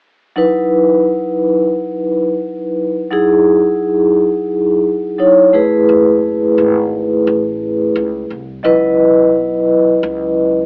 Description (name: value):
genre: hip hop, jazz-hop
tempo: 87 BPM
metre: 4/4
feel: swing 65% on 16ths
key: C# minor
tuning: A4 = 440 Hz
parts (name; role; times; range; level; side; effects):
- vibraphone with soft mallets; accompaniment; 0.4-10.7 s; F#3 to D#5; -11 LUFS; equal; none
- upright bass; bass; 5.9-10.7 s; F#1 to C#2; -28 LUFS; equal; none
room: light reverb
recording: AM radio sound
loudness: -11 LUFS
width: side -30 dB against mid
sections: 0.4-10.7 A section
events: none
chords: 0.4 C#m11 (rootless); 5.5 F#m11; 8.6 C#m11